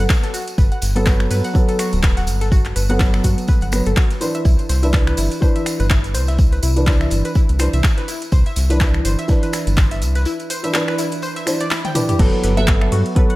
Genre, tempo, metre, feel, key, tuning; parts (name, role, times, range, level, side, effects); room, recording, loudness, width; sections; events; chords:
deep house; 124 BPM; 4/4; swing 57% on 16ths; A4 = 440 Hz
analog pluck; arpeggios; 0.0-13.4 s; E4 to G5; -27 LUFS; left 2 dB; chorus, sidechain pumping, diffuse ambient delay
round analog bass; bass; 0.0-13.0 s; D1 to G2; -18 LUFS; equal; sidechain pumping
crunchy breakbeat drum kit; drums; 0.1-13.3 s; hi-hat, snare drum; -37 LUFS; equal
deep house drum kit; drums; 0.1-13.4 s; crash cymbal, finger snaps, handclaps, hi-hat, toms; -25 LUFS; equal
electronic kick drum; drums; 0.1-13.3 s; -15 LUFS; equal
tambourine; percussion; 0.1-12.2 s; -32 LUFS; right 1 dB
felt-muted upright piano; stabs; 1.0-13.4 s; E3 to C5; -22 LUFS; equal; sidechain pumping, diffuse ambient delay
glassy wavetable pluck; melody; 12.6-12.7 s; E5; -27 LUFS; right 5 dB; chorus, analog delay
light reverb, small room ambience; -15 LUFS; side -18 dB against mid
0.0-12.2 A section; 12.2-13.4 B section
break 10.3-12.2; drum fill 11.8-12.2; drop 12.2-13.4
0.0 Gmaj9; 4.2 Cmaj9; 12.2 Gmaj9